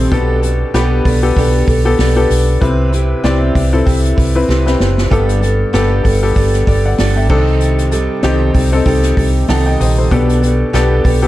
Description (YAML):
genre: piano-driven pop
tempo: 96 BPM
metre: 4/4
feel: swing 56% on 16ths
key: G major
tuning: A4 = 440 Hz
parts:
  - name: warm upright piano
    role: accompaniment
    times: 0.0-11.3 s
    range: G2 to A5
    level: -16 LUFS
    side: left 4 dB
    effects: none
  - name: fingerpicked steel-string acoustic guitar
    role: riff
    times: 0.0-11.3 s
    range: C3 to B4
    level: -19 LUFS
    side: right 4 dB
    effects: none
  - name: vintage muted fingered electric bass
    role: bass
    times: 0.0-11.3 s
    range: F#1 to C2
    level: -14 LUFS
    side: equal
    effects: none
  - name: unplugged drum kit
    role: drums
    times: 0.1-11.2 s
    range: crash cymbal, hi-hat, kick drum, snare drum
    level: -18 LUFS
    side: equal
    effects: none
room: studio ambience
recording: dark, warm production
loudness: -11 LUFS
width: side -15 dB against mid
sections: 0.0-11.3 A section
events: drum fill 4.5-5.1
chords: 0.1 Gadd9/B; 2.6 Cmaj7; 5.1 Gadd9; 7.3 Cm6; 10.1 Gadd9/B